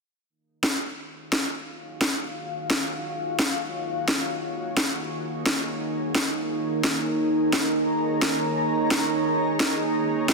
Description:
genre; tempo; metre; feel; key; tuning
dark technical drum and bass; 174 BPM; 4/4; straight; Eb minor; A4 = 439 Hz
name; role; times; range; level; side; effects
deep dark ambient pad; sustained chords; 1.8-10.3 s; Eb4 to Bb5; -26 LUFS; right 1 dB; chorus, built-in reverb
granular cloud pad; texture; 1.6-10.3 s; Eb4 to Bb5; -33 LUFS; equal; built-in reverb
electronic snare drum; drums; 0.6-10.3 s; none; -26 LUFS; equal; overdrive
room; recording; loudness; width
moderate lush hall reverb, RT60 1.9 s; dense, heavily limited modern master; -23 LUFS; side -3 dB against mid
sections
0.3-10.3 A section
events
fade-in on ambient pad 0.3-10.3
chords
0.3 Ebm

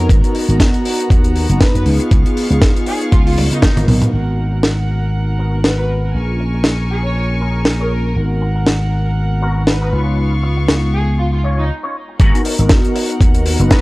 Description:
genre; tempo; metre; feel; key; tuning
nu-disco, nu disco; 119 BPM; 4/4; swing 56% on 16ths; G# dorian; A4 = 440 Hz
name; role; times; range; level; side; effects
dark studio violin section; melody; 0.0-13.8 s; D#4 to C#5; -26 LUFS; equal; tape echo
mellow synth brass; accompaniment; 0.0-13.8 s; G#3 to B4; -22 LUFS; equal; chorus, sidechain pumping, analog delay
rich chamber string section; sustained chords; 0.0-13.8 s; B3 to C#6; -28 LUFS; left 1 dB; sidechain pumping
slap bass with an envelope filter; bass; 0.0-13.7 s; F#1 to C#3; -16 LUFS; equal; transformer saturation, sidechain pumping
electronic kick drum; drums; 0.1-3.7, 12.2-13.8 s; none; -12 LUFS; equal; none
tight funk drum kit; drums; 0.1-13.8 s; hi-hat, snare drum, toms; -17 LUFS; equal; none
electric guitar with an envelope filter; riff; 4.4-13.8 s; B3 to C#5; -26 LUFS; left 1 dB; ensemble chorus, low-pass filter
room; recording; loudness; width
small room reverb; dry, gritty hardware recording, cassette tape; -13 LUFS; side -21 dB against mid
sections
0.0-4.1 A section; 4.1-12.2 B section; 12.2-13.8 C section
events
drum fill 3.4-4.1; band accent 3.6; break 11.7-12.2; drop 12.2-13.8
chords
0.1 G#m9 (rootless); 1.9 C#7; 4.1 G#m9; 6.1 A#m7; 8.2 G#m9; 9.9 C#7; 12.2 G#m9

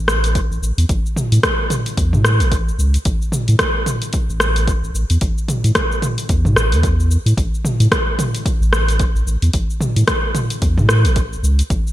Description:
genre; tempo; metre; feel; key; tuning
organic downtempo; 111 BPM; 4/4; swing 58% on 16ths; A major; A4 = 439 Hz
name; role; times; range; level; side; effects
warm sub bass; bass; 0.0-11.8 s; A1 to A2; -15 LUFS; equal; sidechain pumping
deep house drum kit; drums; 0.1-11.9 s; hi-hat, rim click, shaker, toms; -19 LUFS; equal; gated reverb
electronic kick drum; drums; 0.4-11.8 s; none; -21 LUFS; equal; none
room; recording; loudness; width
light reverb, digital ambience; bright 1980s-style digital production; -14 LUFS; side -14 dB against mid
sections
0.0-11.9 A section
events
none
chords
none

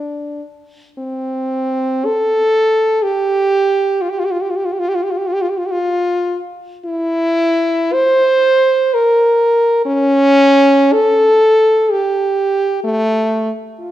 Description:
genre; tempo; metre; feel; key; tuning
classical, free, expressive piece for unaccompanied French horn; 52-66 BPM; 3/4; rubato; D minor; A4 = 440 Hz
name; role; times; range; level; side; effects
warm French horn; solo; 0.0-13.9 s; A3 to C5; -12 LUFS; equal; none
room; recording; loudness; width
moderate recital hall reverb, RT60 1.7 s; minimal, uncompressed stereo recording; -12 LUFS; side -13 dB against mid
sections
0.0-13.9 A section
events
none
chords
none

